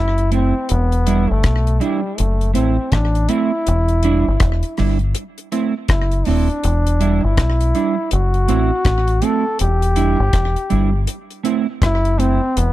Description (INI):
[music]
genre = roots reggae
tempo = 81 BPM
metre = 4/4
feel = swing 61% on 16ths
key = unclear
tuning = A4 = 439 Hz
[part]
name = clear trombone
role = melody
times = 0.0-12.7 s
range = G3 to A4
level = -21 LUFS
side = left 1 dB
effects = tape echo
[part]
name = deep dub fingered electric bass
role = bass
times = 0.0-12.7 s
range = D#1 to B1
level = -17 LUFS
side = left 1 dB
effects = none
[part]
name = deep reggae drum kit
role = drums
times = 0.2-12.7 s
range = hi-hat, kick drum, rim click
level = -21 LUFS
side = left 1 dB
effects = slapback echo
[part]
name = mellow electric guitar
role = accompaniment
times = 0.3-12.4 s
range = G3 to E4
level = -21 LUFS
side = right 6 dB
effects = analog chorus, tape echo
[sound]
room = light reverb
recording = dry, close 1970s-style studio recording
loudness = -15 LUFS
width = side -15 dB against mid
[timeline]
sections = 0.0-12.7 A section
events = none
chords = 0.0 F#m7b5; 0.7 Em7; 2.2 F#m7b5; 3.7 Em7; 5.1 F#m7b5; 6.6 Em7; 8.1 F#m7b5; 9.6 Em7; 11.1 F#m7b5